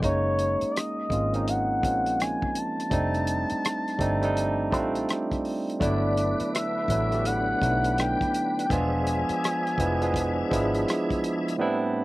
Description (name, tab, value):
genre	R&B, neo-soul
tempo	83 BPM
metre	4/4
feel	swing 63% on 16ths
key	unclear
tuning	A4 = 440 Hz
part	expressive synth lead	melody	0.0-10.9 s	C#5 to A5	-28 LUFS	left 1 dB	chorus, slapback echo
part	barky tine electric piano	accompaniment	0.0-12.0 s	A2 to E5	-27 LUFS	right 2 dB	none
part	vintage muted fingered electric bass	bass	0.0-10.8 s	E1 to B1	-29 LUFS	left 1 dB	none
part	warm soul drum kit	drums	0.0-11.6 s	hi-hat, kick drum, rim click	-31 LUFS	equal	none
part	tonewheel organ	sustained chords	5.8-11.6 s	D3 to E5	-33 LUFS	left 1 dB	chorus vibrato, slow rotary speaker
room	little or no reverb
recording	recorded outdoors, with no room sound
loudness	-23 LUFS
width	side -18 dB against mid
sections	0.0-11.6 A section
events	tine electric piano fill 10.5-11.6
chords	0.0 F#69; 2.9 F9; 5.8 Gmaj7; 8.7 E7b9